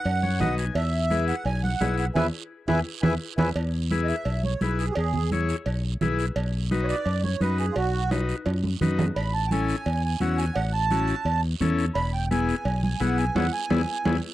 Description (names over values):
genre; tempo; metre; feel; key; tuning
latin, cumbia; 171 BPM; 4/4; straight; E major; A4 = 440 Hz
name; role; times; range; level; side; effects
accordion; melody; 0.0-14.2 s; F4 to B5; -29 LUFS; right 4 dB; light tremolo tuning
guiro; percussion; 0.0-14.1 s; none; -41 LUFS; right 11 dB; none
fingered electric bass; bass; 0.1-14.2 s; E1 to F#2; -26 LUFS; equal; none
cowbell and timbales; percussion; 0.1-14.1 s; none; -33 LUFS; right 4 dB; none
combo organ; accompaniment; 0.2-14.2 s; B3 to G#5; -29 LUFS; left 4 dB; spring reverb
congas; percussion; 0.2-14.1 s; none; -28 LUFS; right 2 dB; none
room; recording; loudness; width
little or no reverb; dry, close 1970s-style studio recording; -23 LUFS; side -15 dB against mid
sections
0.0-3.6 A section; 3.6-14.3 B section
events
transistor combo organ fill 0.1-0.8; band accent 2.2-3.6, 13.4-14.3; drum fill 2.5-3.6, 8.1-9.2; accordion solo 3.6-14.3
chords
0.0 B; 0.8 E; 6.4 B; 9.2 A; 12.0 E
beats
0.06 0.41 | 0.76 1.11 1.46 1.81 | 2.16 2.51 2.86 3.21 | 3.56 3.91 4.26 4.61 | 4.96 5.31 5.66 6.01 | 6.36 6.71 7.06 7.41 | 7.76 8.11 8.46 8.81 | 9.16 9.51 9.86 10.21 | 10.56 10.91 11.26 11.61 | 11.96 12.31 12.66 13.01 | 13.36 13.71 14.06